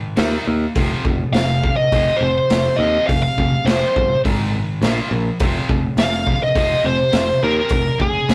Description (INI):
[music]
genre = hard rock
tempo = 104 BPM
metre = 4/4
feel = straight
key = F minor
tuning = A4 = 440 Hz
[part]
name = high-gain distorted guitar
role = riff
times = 0.0-8.3 s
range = F2 to Eb4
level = -26 LUFS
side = equal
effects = distortion
[part]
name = modern bright picked electric bass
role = bass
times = 0.2-8.3 s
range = F1 to Eb2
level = -24 LUFS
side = equal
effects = none
[part]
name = raw garage drum kit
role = drums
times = 0.2-8.3 s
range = hi-hat, kick drum, snare drum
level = -23 LUFS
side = equal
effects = none
[part]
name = bluesy overdriven lead guitar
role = melody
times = 1.3-8.3 s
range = Ab4 to F5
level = -20 LUFS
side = equal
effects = distortion
[sound]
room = moderate studio reverb, RT60 0.5 s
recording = rough rehearsal-room recording, tube saturation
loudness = -18 LUFS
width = mono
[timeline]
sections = 0.0-8.3 A section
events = none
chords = 0.2 Eb5; 0.8 F5; 4.2 Ab5; 4.8 Bb5; 5.4 F5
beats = 0.17 | 0.76 1.34 1.92 2.50 | 3.08 3.66 4.24 4.82 | 5.40 5.98 6.55 7.13 | 7.71 8.29